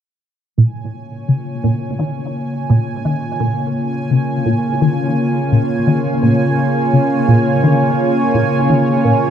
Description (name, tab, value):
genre	ambient, sequencer-driven space music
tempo	85 BPM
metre	4/4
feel	straight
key	Bb minor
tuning	A4 = 441 Hz
part	lush unison pad	sustained chords	0.6-9.3 s	Db3 to Db5	-17 LUFS	equal	chorus
part	resonant blip pluck	riff	0.6-9.3 s	Bb2 to Eb3	-17 LUFS	equal	phaser, ensemble chorus, tape echo
part	bubbling stepped-filter texture	texture	0.7-9.3 s	Ab5	-23 LUFS	right 7 dB	chorus, built-in reverb
room	wet plate reverb, RT60 3.5 s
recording	dark, warm production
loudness	-14 LUFS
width	side -9 dB against mid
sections	0.6-9.3 A section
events	none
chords	0.6 Bbm